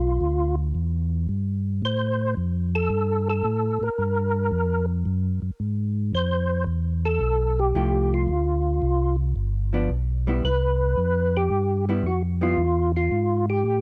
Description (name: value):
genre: jazz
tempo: 112 BPM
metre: 4/4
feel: swing 68% on 8ths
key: C major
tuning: A4 = 441 Hz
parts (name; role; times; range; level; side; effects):
- percussive tonewheel organ; melody; 0.0-13.8 s; F4 to C5; -27 LUFS; equal; slow rotary speaker, chorus vibrato
- mellow tonewheel organ; bass; 0.0-13.8 s; G1 to A2; -26 LUFS; equal; chorus vibrato, slow rotary speaker
- vintage hollow-body jazz guitar; accompaniment; 7.8-12.6 s; F3 to G4; -29 LUFS; equal; none
room: little or no reverb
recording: dry, close 1970s-style studio recording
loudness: -24 LUFS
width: mono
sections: 0.0-13.8 A section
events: none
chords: 0.0 Bdim; 0.8 Em; 1.8 Am7; 4.0 Gm7; 5.1 F#sus2; 6.1 Fmaj9; 8.3 Dm7; 9.4 G7; 10.4 Cmaj7